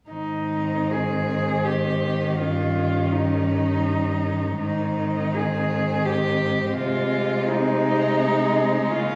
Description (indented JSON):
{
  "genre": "classical, lyrical piece for cello ensemble",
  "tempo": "73-86 BPM",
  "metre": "3/4",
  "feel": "rubato",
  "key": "Ab major",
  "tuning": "A4 = 440 Hz",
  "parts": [
    { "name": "warm cello", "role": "melody", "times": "0.1-9.2 s", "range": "Eb4 to Ab4", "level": "-28 LUFS", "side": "equal", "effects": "none" },
    { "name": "warm cello", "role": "second line", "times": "0.1-9.2 s", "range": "Bb3 to Db4", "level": "-31 LUFS", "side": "equal", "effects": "none" },
    { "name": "rich cello", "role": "accompaniment", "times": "0.1-9.2 s", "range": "Eb3 to Ab3", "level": "-28 LUFS", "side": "equal", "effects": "none" },
    { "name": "rich cello", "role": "bass", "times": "0.1-9.2 s", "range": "G2 to Db3", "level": "-28 LUFS", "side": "equal", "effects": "none" }
  ],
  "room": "wet recital hall reverb, RT60 1.4 s",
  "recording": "studio reverb",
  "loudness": "-23 LUFS",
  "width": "mono",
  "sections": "0.1-9.2 A section",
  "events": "none",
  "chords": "0.1 Ab; 2.4 Eb7/G; 4.6 Ab; 6.8 Ab/C",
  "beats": "| 0.11 0.91 1.64 | 2.39 3.12 3.86 | 4.59 5.35 6.07 | 6.77 7.47 8.18 | 8.89"
}